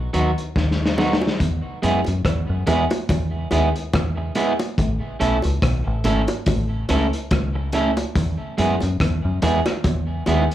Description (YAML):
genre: roots reggae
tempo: 71 BPM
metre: 4/4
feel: swing 56% on 16ths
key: E major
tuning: A4 = 437 Hz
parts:
  - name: deep dub fingered electric bass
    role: bass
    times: 0.0-10.5 s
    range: G#1 to F#2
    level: -22 LUFS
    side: left 1 dB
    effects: none
  - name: electric guitar at the edge of break-up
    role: accompaniment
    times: 0.1-10.4 s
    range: F#3 to A4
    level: -23 LUFS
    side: right 2 dB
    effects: tape echo, slapback echo
  - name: vintage drum kit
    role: drums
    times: 0.1-10.5 s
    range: hi-hat, kick drum, rim click, snare drum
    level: -24 LUFS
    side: left 1 dB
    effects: none
  - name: bongos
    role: percussion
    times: 1.0-10.5 s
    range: none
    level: -26 LUFS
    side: equal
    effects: slapback echo
room: light reverb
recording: live gig heard through the venue's PA, club reverb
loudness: -18 LUFS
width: side -12 dB against mid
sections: 0.0-1.4 A section; 1.4-10.5 B section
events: drum fill 0.6-1.4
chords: 0.0 B; 1.4 E; 4.8 A; 8.2 E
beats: 0.56 | 1.40 2.25 3.09 3.93 | 4.78 5.62 6.47 7.31 | 8.16 9.00 9.85